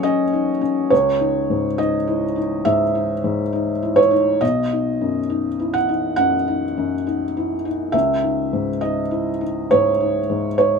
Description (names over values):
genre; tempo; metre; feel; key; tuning
neoclassical minimalist piano; 68 BPM; 4/4; rubato; C# minor; A4 = 439 Hz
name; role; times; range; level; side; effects
felt-muted upright piano; solo; 0.0-10.8 s; B1 to F#5; -17 LUFS; equal; none
room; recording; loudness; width
light reverb; minimal, uncompressed stereo recording; -17 LUFS; side -5 dB against mid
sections
0.0-10.8 A section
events
none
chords
0.0 F#5; 0.9 C#madd9; 4.4 B; 7.9 C#madd9